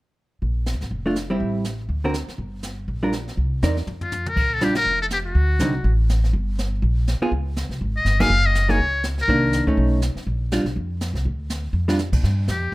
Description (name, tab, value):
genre	jazz, small-group swing and bop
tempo	244 BPM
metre	4/4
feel	swing 57% on 8ths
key	Bb major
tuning	A4 = 440 Hz
part	upright bass	bass	0.4-12.7 s	F1 to Bb2	-22 LUFS	equal	none
part	jazz brush drum kit	drums	0.4-12.7 s	brushed snare drum, crash cymbal, hi-hat, kick drum, ride cymbal, snare drum, toms	-29 LUFS	equal	none
part	vintage hollow-body jazz guitar	accompaniment	1.1-12.0 s	D3 to D5	-23 LUFS	right 1 dB	none
part	trumpet with metal mute	melody	4.0-6.0, 8.0-9.7, 12.5-12.7 s	F4 to F5	-22 LUFS	left 2 dB	none
room	studio ambience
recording	rough home demo mix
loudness	-19 LUFS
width	side -20 dB against mid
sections	0.4-4.4 A section; 4.4-12.2 B section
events	drum fill 3.9-4.4, 11.7; band accent 4.7, 8.2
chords	0.4 Bbmaj7; 1.4 Am7; 1.9 Daug7; 2.4 Gm; 3.4 Cm9; 3.9 N.C.; 4.4 Bb6; 5.3 D7; 6.3 Gm; 7.3 Db5; 8.3 Gb5; 9.3 Cm9; 9.8 B9; 10.3 Bb; 12.2 N.C.